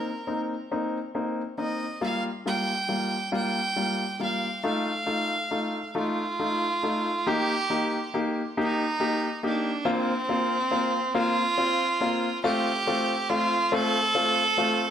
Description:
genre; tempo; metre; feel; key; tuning
pop; 46 BPM (dotted quarters); 6/8; straight; unclear; A4 = 438 Hz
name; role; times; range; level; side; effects
bright violin; melody; 0.0-14.9 s; C4 to G5; -26 LUFS; right 2 dB; digital delay
clear baby grand piano; accompaniment; 0.0-14.8 s; G3 to G4; -27 LUFS; left 2 dB; none
room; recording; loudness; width
moderate recital hall reverb, RT60 1.3 s; none; -24 LUFS; side -9 dB against mid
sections
0.0-7.3 A section; 7.3-14.9 B section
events
none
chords
0.0 Cm7; 2.0 Gm7; 4.6 F7; 7.3 Eb; 9.9 Bbsus2; 12.4 F/A

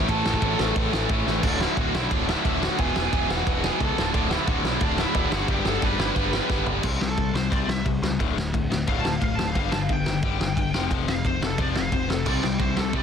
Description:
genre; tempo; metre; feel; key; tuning
punk rock; 177 BPM; 4/4; straight; D major; A4 = 440 Hz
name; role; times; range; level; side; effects
bluesy overdriven lead guitar; melody; 0.0-13.0 s; D4 to B5; -30 LUFS; right 2 dB; distortion
overdriven electric guitar; riff; 0.0-13.0 s; D2 to C4; -27 LUFS; left 12 dB; none
tight distorted guitar; riff; 0.0-6.8, 12.3-13.0 s; D2 to C4; -28 LUFS; right 17 dB; distortion
growling picked electric bass; bass; 0.0-13.0 s; D1 to C#2; -29 LUFS; right 1 dB; overdrive
loose indie drum kit; drums; 0.0-13.0 s; crash cymbal, kick drum, ride cymbal, snare drum, toms; -26 LUFS; right 1 dB; none
room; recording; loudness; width
light reverb; dense, heavily limited modern master; -21 LUFS; side -7 dB against mid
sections
0.0-1.4 A section; 1.4-6.8 B section; 6.8-13.0 C section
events
drum fill 1.3, 6.5-6.8; lead electric guitar solo 6.8-13.0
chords
0.0 A5; 1.4 D; 2.8 E; 4.0 D; 5.3 G; 6.8 C5; 8.2 D5; 9.6 G5; 10.7 F5; 12.3 C5

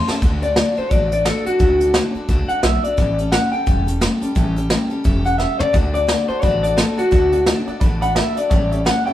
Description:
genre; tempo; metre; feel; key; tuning
rockabilly; 174 BPM; 4/4; swing 60% on 8ths; D major; A4 = 439 Hz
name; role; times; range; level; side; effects
electric guitar through a small old amp; melody; 0.0-9.1 s; F#4 to A5; -19 LUFS; left 2 dB; none
picked steel-string acoustic guitar; accompaniment; 0.0-9.1 s; A2 to A4; -25 LUFS; left 1 dB; none
upright bass; bass; 0.0-9.1 s; E1 to D2; -22 LUFS; equal; none
clear upright piano; accompaniment; 0.1-0.2, 5.7-9.1 s; C#5 to B5; -31 LUFS; right 3 dB; none
vintage brush drum kit; drums; 0.1-9.0 s; hi-hat, kick drum, snare drum, toms; -19 LUFS; equal; none
room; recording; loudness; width
moderate stone room reverb, RT60 1.3 s; band playing live in one room; -15 LUFS; side -12 dB against mid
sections
0.2-9.1 A section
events
drum fill 0.0, 5.4-5.7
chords
0.2 D; 3.0 A7; 5.7 D; 8.5 A7

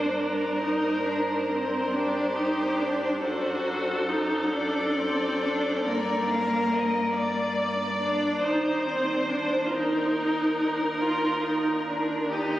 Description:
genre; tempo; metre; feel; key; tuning
classical, slow romantic movement for string quartet; 46 BPM (dotted quarters); 12/8; rubato; unclear; A4 = 441 Hz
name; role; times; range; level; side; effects
warm violin; melody; 0.0-12.6 s; Bb4 to F5; -34 LUFS; left 2 dB; none
warm violin; second line; 0.0-12.6 s; G4 to D5; -29 LUFS; equal; none
warm viola; accompaniment; 0.0-12.6 s; Bb3 to F#4; -26 LUFS; equal; none
rich cello; bass; 0.0-12.6 s; Eb2 to G2; -36 LUFS; right 1 dB; none
room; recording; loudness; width
wet cathedral reverb, RT60 6.4 s; recorded on a phone in the room, studio reverb, compression; -24 LUFS; side -14 dB against mid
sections
0.0-12.6 A section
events
none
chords
0.0 Gm; 3.2 D/F#; 5.9 Gm; 8.4 Eb5

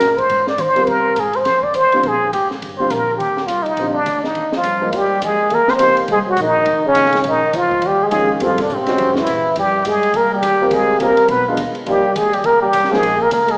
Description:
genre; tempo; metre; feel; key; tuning
jazz, small-group swing and bop; 207 BPM; 4/4; swing 60% on 8ths; Eb major, Ab major from 4.9 s; A4 = 440 Hz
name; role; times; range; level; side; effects
trumpet with plunger mute; melody; 0.0-13.6 s; C4 to D5; -18 LUFS; equal; none
upright bass; bass; 0.0-13.6 s; F1 to Eb3; -34 LUFS; equal; none
compact cocktail drum kit; drums; 0.0-13.5 s; hi-hat, kick drum, ride cymbal, snare drum; -31 LUFS; equal; none
warm grand piano; accompaniment; 0.8-13.0 s; Ab2 to C5; -23 LUFS; equal; none
growling trombone; second line; 4.6-13.6 s; C3 to C4; -23 LUFS; equal; none
room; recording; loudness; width
wet recital hall reverb, RT60 1.4 s; recorded in a church or concert hall, small speaker sound; -16 LUFS; mono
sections
0.0-4.9 A section; 4.9-13.6 B section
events
none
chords
0.3 Ab6; 1.5 F5; 2.0 Absus2; 2.6 Ebmaj7; 4.4 Eb; 4.9 Abmaj7; 6.1 Ab9; 6.7 Dbadd9/F; 7.3 Bbm7; 8.4 Gsus2; 9.0 Gb9; 9.6 Fm9; 10.7 Dm7b5; 11.3 Bdim7; 11.9 Cm7; 13.0 Bbm

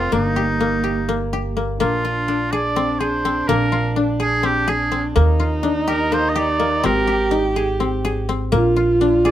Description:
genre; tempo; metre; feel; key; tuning
contemporary instrumental, chamber music in an uneven meter; 250 BPM (eighths); 7/8; straight; unclear; A4 = 440 Hz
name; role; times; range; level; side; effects
clear oboe; melody; 0.0-9.3 s; Eb4 to Eb5; -21 LUFS; right 1 dB; none
dark viola; second line; 0.0-9.3 s; Bb3 to G4; -22 LUFS; right 2 dB; none
koto; arpeggios; 0.0-9.3 s; Bb3 to Ab4; -22 LUFS; left 4 dB; none
upright bass; bass; 0.0-9.3 s; G1 to Eb2; -23 LUFS; right 1 dB; none
room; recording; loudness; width
light reverb; none; -17 LUFS; side -12 dB against mid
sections
0.0-1.8 A section; 1.8-9.3 B section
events
none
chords
0.1 Eb/G; 1.8 Bb9; 5.2 Ebmaj9; 6.8 Abmaj9; 8.5 Bb9

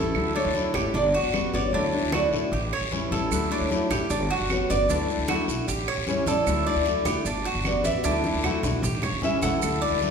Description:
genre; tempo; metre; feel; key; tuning
latin, Cuban son and guajira; 152 BPM; 4/4; straight; D major; A4 = 440 Hz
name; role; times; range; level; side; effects
fingerpicked steel-string acoustic guitar; accompaniment; 0.0-10.1 s; D3 to F#4; -29 LUFS; left 4 dB; none
Cuban tres; arpeggios; 0.0-10.1 s; D4 to D5; -28 LUFS; right 1 dB; none
upright bass; bass; 0.0-10.1 s; G1 to D2; -30 LUFS; equal; none
claves; percussion; 0.1-9.8 s; none; -37 LUFS; right 8 dB; none
congas; percussion; 0.2-10.1 s; none; -34 LUFS; equal; none
guiro; percussion; 0.2-10.1 s; none; -36 LUFS; left 5 dB; none
nylon-string guitar; melody; 0.4-9.8 s; B4 to F#5; -28 LUFS; right 2 dB; none
maracas; percussion; 3.3-10.1 s; none; -38 LUFS; right 8 dB; none
room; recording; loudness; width
wet recital hall reverb, RT60 1.4 s; recorded in a church or concert hall; -22 LUFS; side -6 dB against mid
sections
0.0-10.1 A section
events
nylon-string guitar solo 0.0-10.1; drum fill 8.0-9.6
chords
0.2 Dadd9; 0.9 Gmaj7; 1.7 Dadd9; 2.5 A7; 3.3 Dadd9; 4.1 Gmaj7; 4.9 Dadd9; 5.7 A7; 6.5 Dadd9; 7.3 Gmaj7; 8.0 Dadd9; 8.8 A7

